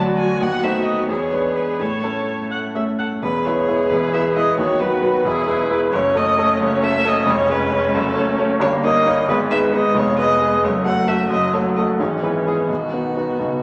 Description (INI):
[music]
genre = quick classical-period movement for piano quartet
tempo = 88 BPM (dotted quarters)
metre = 6/8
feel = straight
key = A major, E major from 3.2 s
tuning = A4 = 441 Hz
[part]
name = muted violin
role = melody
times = 0.0-13.6 s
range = F#4 to G#5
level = -23 LUFS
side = equal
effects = none
[part]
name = muted cello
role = second line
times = 0.0-13.5 s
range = C#3 to B3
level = -30 LUFS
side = equal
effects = none
[part]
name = clear baby grand piano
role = accompaniment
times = 0.0-13.6 s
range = E1 to D5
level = -22 LUFS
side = equal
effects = none
[part]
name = muted viola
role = accompaniment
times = 0.0-13.6 s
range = F#3 to F#5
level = -29 LUFS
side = equal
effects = none
[sound]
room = wet recital hall reverb, RT60 1.4 s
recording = none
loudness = -19 LUFS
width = mono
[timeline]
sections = 0.0-3.2 A section; 3.2-13.6 B section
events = none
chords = 0.4 D#dim7; 1.1 E7; 1.8 A; 3.2 E; 4.6 B/D#; 5.3 E; 5.9 F#m; 7.3 C#/E#; 7.9 F#m; 8.6 D#7/G; 9.3 G#m; 10.0 Fm7b5; 10.6 F#m; 12.0 E/G#; 12.7 B